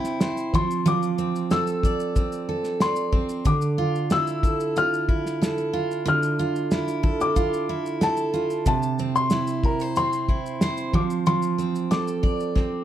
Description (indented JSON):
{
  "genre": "acoustic pop",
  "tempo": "92 BPM",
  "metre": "4/4",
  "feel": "straight",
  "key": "D minor",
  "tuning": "A4 = 440 Hz",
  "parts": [
    { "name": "dark upright piano", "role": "melody", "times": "0.0-12.8 s", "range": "G5 to F6", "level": "-27 LUFS", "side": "left 4 dB", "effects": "none" },
    { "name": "picked steel-string acoustic guitar", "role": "accompaniment", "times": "0.0-12.8 s", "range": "C3 to D5", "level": "-24 LUFS", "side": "right 3 dB", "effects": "none" },
    { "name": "cloth-damped thuddy drum kit", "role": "drums", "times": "0.0-12.7 s", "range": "kick drum, shaker, snare drum", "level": "-24 LUFS", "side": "equal", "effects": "none" }
  ],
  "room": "moderate studio reverb, RT60 0.6 s",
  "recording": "none",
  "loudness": "-21 LUFS",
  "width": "side -11 dB against mid",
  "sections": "0.0-12.8 A section",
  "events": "drum fill 12.6",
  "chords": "0.0 C; 0.5 F6; 3.5 Dmadd9; 8.7 C; 10.9 F6",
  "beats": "0.21 | 0.86 1.51 2.16 2.81 | 3.46 4.11 4.76 5.42 | 6.07 6.71 7.37 8.02 | 8.66 9.31 9.96 10.62 | 11.27 11.91 12.56"
}